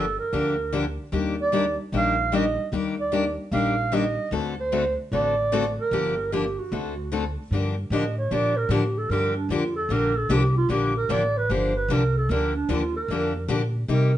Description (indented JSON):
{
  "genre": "acoustic string swing (jazz manouche)",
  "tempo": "150 BPM",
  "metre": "4/4",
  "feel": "swing 64% on 8ths",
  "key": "G minor",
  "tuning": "A4 = 436 Hz",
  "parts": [
    { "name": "breathy clarinet", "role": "melody", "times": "0.0-14.1 s", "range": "D4 to F5", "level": "-25 LUFS", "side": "right 3 dB", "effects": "none" },
    { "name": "picked steel-string acoustic guitar", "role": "accompaniment", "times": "0.0-14.1 s", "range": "C3 to A4", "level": "-26 LUFS", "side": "left 4 dB", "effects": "none" },
    { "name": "upright bass", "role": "bass", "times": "0.0-14.2 s", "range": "G1 to C3", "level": "-27 LUFS", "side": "equal", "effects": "none" }
  ],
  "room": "moderate club reverb, RT60 0.8 s",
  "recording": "nothing above 10.5 kHz",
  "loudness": "-22 LUFS",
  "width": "side -12 dB against mid",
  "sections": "0.0-7.5 A section; 7.5-14.2 B section",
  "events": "clarinet solo 7.5-14.2",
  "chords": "0.0 Gm7; 1.1 Ebmaj7; 4.3 D7; 5.9 Gm7; 6.7 D7; 7.5 Gm7",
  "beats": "0.32 0.72 | 1.12 1.52 1.92 2.32 | 2.72 3.12 3.52 3.92 | 4.32 4.71 5.11 5.51 | 5.91 6.31 6.71 7.11 | 7.51 7.91 8.31 8.71 | 9.11 9.51 9.90 10.30 | 10.70 11.10 11.50 11.90 | 12.30 12.70 13.10 13.49 | 13.89"
}